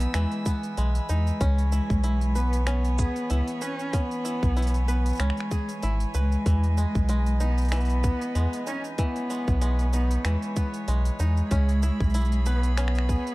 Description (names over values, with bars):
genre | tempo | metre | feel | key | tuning
folktronica | 95 BPM | 4/4 | swing 56% on 16ths | E major | A4 = 440 Hz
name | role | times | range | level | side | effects
dark cello | melody | 0.0-13.3 s | G#3 to C#4 | -30 LUFS | equal | none
rich string quartet | sustained chords | 0.0-13.3 s | E3 to E6 | -37 LUFS | right 2 dB | none
bluegrass banjo | arpeggios | 0.0-13.3 s | E3 to B4 | -35 LUFS | equal | digital delay
round analog bass | bass | 0.0-13.2 s | G#1 to E2 | -23 LUFS | equal | none
organic electronic drum kit | drums | 0.0-13.3 s | finger snaps, hi-hat, shaker | -38 LUFS | right 2 dB | none
electronic kick drum | drums | 0.5-13.2 s | none | -25 LUFS | equal | none
room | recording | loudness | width
small room ambience | dark, warm production | -23 LUFS | side -20 dB against mid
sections
0.0-13.3 A section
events
none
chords
0.0 Emaj7; 1.4 C#m7; 6.5 Emaj7; 11.5 C#m7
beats
0.14 0.78 | 1.41 2.04 2.67 3.30 | 3.93 4.57 5.20 5.83 | 6.46 7.09 7.72 8.36 | 8.99 9.62 10.25 10.88 | 11.51 12.14 12.78